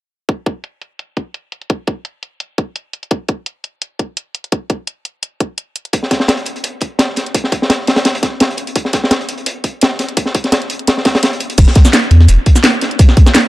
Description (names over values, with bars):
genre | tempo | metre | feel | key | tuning
liquid drum and bass | 170 BPM | 4/4 | swing 54% on 16ths | unclear | A4 = 440 Hz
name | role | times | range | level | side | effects
electronic kick drum | drums | 0.3-13.2 s | none | -11 LUFS | equal | high-pass filter on kick, high-pass filter on room
garage drum kit | drums | 0.3-13.4 s | crash cymbal, hi-hat, shaker, snare drum | -16 LUFS | equal | low-pass filter on hats, low-pass filter on cymbals, low-pass filter on perc, low-pass filter on snare, low-pass filter on room
crunchy breakbeat drum kit | drums | 5.9-13.4 s | hi-hat, snare drum | -15 LUFS | equal | high-pass filter on hats, high-pass filter on snare, high-pass filter on room
warm sub bass | bass | 11.6-12.4 s | E1 to E2 | -6 LUFS | equal | none
room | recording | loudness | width
light reverb | dark, warm production | -12 LUFS | side -17 dB against mid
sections
0.3-11.6 A section; 11.6-13.5 B section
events
break 11.2-11.6; drop 11.6-13.5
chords
none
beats
| 0.29 0.64 0.99 1.35 | 1.70 2.05 2.40 2.76 | 3.11 3.46 3.82 4.17 | 4.52 4.88 5.23 5.58 | 5.93 6.29 6.64 6.99 | 7.35 7.70 8.05 8.40 | 8.76 9.11 9.46 9.82 | 10.17 10.52 10.88 11.23 | 11.58 11.94 12.29 12.64 | 12.99 13.35